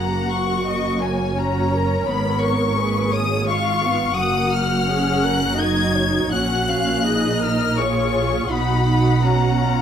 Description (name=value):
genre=classical, slow romantic movement for string orchestra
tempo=84 BPM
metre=3/4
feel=uneven beats, rubato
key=F# major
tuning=A4 = 440 Hz
part: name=clear chamber violin section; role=melody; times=0.0-9.8 s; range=G#5 to G#6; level=-24 LUFS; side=left 5 dB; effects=none
part: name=rich chamber violin section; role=second line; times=0.0-9.8 s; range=B4 to F#5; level=-26 LUFS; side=left 4 dB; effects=none
part: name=dark studio viola section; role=accompaniment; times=0.0-9.8 s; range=G#3 to A#4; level=-23 LUFS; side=right 1 dB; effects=none
part: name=rich symphonic cello section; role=bass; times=0.0-9.8 s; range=F#2 to B2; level=-25 LUFS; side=right 3 dB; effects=none
part: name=warm chamber double bass section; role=bass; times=0.0-9.8 s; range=F#1 to B1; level=-24 LUFS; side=right 3 dB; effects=none
room=moderate scoring stage reverb, RT60 1.6 s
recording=close, detailed microphones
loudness=-17 LUFS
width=side -8 dB against mid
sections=0.0-9.8 A section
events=none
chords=0.0 F#; 2.1 C#7/G#; 4.2 F#; 6.3 F#/A#; 8.5 B; 9.2 B5